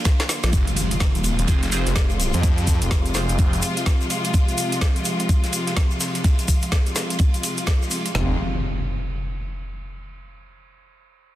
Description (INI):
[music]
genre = bass house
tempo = 126 BPM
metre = 4/4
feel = swing 61% on 16ths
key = F minor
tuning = A4 = 440 Hz
[part]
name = clear symphonic string section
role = sustained chords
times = 0.0-8.4 s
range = C3 to F4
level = -27 LUFS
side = left 1 dB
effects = sidechain pumping, low-pass filter
[part]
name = big rock drum kit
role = drums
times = 0.0-8.1 s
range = ride cymbal, snare drum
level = -35 LUFS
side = right 4 dB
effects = sidechain pumping on cymbals, high-pass filter on cymbals, small room reverb, high-pass filter on snare, high-pass filter on room
[part]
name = garage drum kit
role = drums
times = 0.1-8.3 s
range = kick drum, snare drum, toms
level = -19 LUFS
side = equal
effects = overdrive, small room reverb
[part]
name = garage drum kit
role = drums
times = 0.1-8.1 s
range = hi-hat, snare drum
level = -28 LUFS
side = right 1 dB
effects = overdrive, small room reverb
[part]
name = tube shaker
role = percussion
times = 0.1-8.1 s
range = none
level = -32 LUFS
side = left 4 dB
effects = none
[part]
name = phased detuned saw bass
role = bass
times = 0.4-3.6, 8.2-8.4 s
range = Eb1 to F2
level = -22 LUFS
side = equal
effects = phaser, tube saturation, sidechain pumping
[part]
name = impact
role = sound effects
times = 0.5-2.4, 8.1-10.1 s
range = none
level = -28 LUFS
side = equal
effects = none
[part]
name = band-passed chord stab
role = stabs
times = 1.5-3.3 s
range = C4 to C5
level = -32 LUFS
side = right 4 dB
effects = phaser, wide subtle chorus, sidechain pumping, tape echo
[sound]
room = little or no reverb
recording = dense, heavily limited modern master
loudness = -19 LUFS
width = side -14 dB against mid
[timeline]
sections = 0.5-8.1 A section; 8.1-10.1 B section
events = drum fill 0.0-0.5; impact 0.5-2.4; filter sweep on string section 0.5-8.1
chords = 0.0 Bb; 0.5 Fm; 8.1 N.C.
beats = 0.05 | 0.53 1.01 1.48 1.96 | 2.44 2.91 3.39 3.86 | 4.34 4.82 5.29 5.77 | 6.24 6.72 7.20 7.67 | 8.15 8.62 9.10 9.58